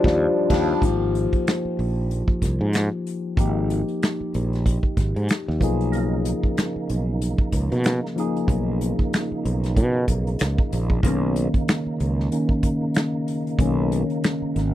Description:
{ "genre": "R&B, neo-soul", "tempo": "94 BPM", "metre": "4/4", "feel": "swing 56% on 16ths", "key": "unclear", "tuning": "A4 = 440 Hz", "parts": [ { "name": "tine electric piano", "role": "accompaniment", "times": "0.0-14.7 s", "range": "D#3 to Ab4", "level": "-24 LUFS", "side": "left 2 dB", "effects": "phaser" }, { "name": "percussive tonewheel organ", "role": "sustained chords", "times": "0.0-0.8, 5.9-14.7 s", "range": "C#3 to F4", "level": "-32 LUFS", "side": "right 6 dB", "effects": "overdrive, chorus vibrato, fast rotary speaker" }, { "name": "fretless electric bass", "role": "bass", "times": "0.0-14.7 s", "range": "Ab1 to B2", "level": "-23 LUFS", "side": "right 1 dB", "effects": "none" }, { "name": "unplugged drum kit", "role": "drums", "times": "0.0-14.7 s", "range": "crash cymbal, finger snaps, hi-hat, kick drum, snare drum", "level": "-22 LUFS", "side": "equal", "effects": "none" } ], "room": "little or no reverb", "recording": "dry, close 1970s-style studio recording", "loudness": "-20 LUFS", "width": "side -13 dB against mid", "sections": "0.8-11.0 A section; 11.0-14.7 B section", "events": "band accent 0.0-0.8; tine electric piano solo 11.0-14.7", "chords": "0.0 Ebmaj9; 0.8 Abmaj7sus2; 5.6 Bmaj9" }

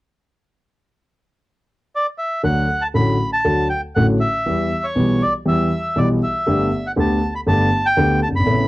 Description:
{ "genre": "tango", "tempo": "119 BPM", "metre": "4/4", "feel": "rubato", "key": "D major", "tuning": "A4 = 440 Hz", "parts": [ { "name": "bandoneon", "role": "melody", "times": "2.0-8.7 s", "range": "C#5 to B5", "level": "-20 LUFS", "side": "equal", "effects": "none" }, { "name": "warm concert grand piano", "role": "accompaniment", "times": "2.4-8.7 s", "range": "F#1 to G4", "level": "-17 LUFS", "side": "equal", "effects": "none" } ], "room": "light reverb", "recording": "dry, close 1970s-style studio recording", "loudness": "-16 LUFS", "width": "side -18 dB against mid", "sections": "0.4-2.4 A section; 2.4-8.7 B section", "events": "none", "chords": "0.4 N.C.; 2.4 D; 4.5 Em; 6.5 Gadd9" }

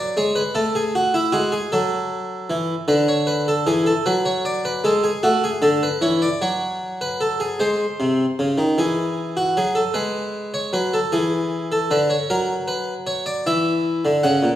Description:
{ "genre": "classical, baroque-style two-part invention for harpsichord", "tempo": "51 BPM (dotted quarters)", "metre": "12/8", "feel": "straight", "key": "B minor", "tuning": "A4 = 442 Hz", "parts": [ { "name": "harpsichord", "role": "solo", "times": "0.0-14.6 s", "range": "A#2 to F#5", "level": "-18 LUFS", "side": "equal", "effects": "none" } ], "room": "wet recital hall reverb, RT60 1.3 s", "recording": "heard from further back in the room", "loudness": "-18 LUFS", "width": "side -12 dB against mid", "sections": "0.0-7.6 A section; 7.6-14.6 B section", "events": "none", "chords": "0.0 F#5; 0.5 F#m; 2.9 Bm/D; 7.6 G#7; 9.9 C#m; 12.3 F#7" }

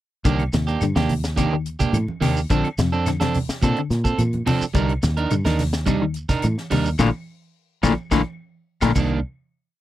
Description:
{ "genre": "afrobeat", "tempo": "107 BPM", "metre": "4/4", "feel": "straight", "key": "C dorian", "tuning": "A4 = 440 Hz", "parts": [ { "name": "electric guitar at the edge of break-up", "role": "stabs", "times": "0.2-9.2 s", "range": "Eb3 to Bb4", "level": "-23 LUFS", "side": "right 5 dB", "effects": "none" }, { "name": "semi-hollow electric guitar", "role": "arpeggios", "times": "0.3-9.1 s", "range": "A2 to Eb3", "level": "-23 LUFS", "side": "left 6 dB", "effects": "none" }, { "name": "fingered electric bass", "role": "bass", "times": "0.3-9.2 s", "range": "Bb1 to Bb2", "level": "-23 LUFS", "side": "equal", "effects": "none" }, { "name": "tight funk drum kit", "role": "drums", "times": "0.3-9.1 s", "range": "crash cymbal, hi-hat, kick drum, snare drum", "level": "-26 LUFS", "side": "equal", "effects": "none" }, { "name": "congas", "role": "percussion", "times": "0.3-9.1 s", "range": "none", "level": "-28 LUFS", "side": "right 2 dB", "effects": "none" }, { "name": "shekere", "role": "percussion", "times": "0.3-9.1 s", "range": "none", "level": "-29 LUFS", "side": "right 2 dB", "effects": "none" }, { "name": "claves", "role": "percussion", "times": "0.4-9.1 s", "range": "none", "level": "-38 LUFS", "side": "left 6 dB", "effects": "none" } ], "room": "little or no reverb", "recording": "dry, close 1970s-style studio recording", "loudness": "-19 LUFS", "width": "side -14 dB against mid", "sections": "0.3-9.2 groove; 9.2-9.8 final hit", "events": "band accent 7.0-9.2; drum fill 8.5-9.2", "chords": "0.3 Cm9; 2.5 Bbmaj9; 4.7 Cm9; 7.0 Bbmaj7; 9.0 Cm9; 9.2 N.C." }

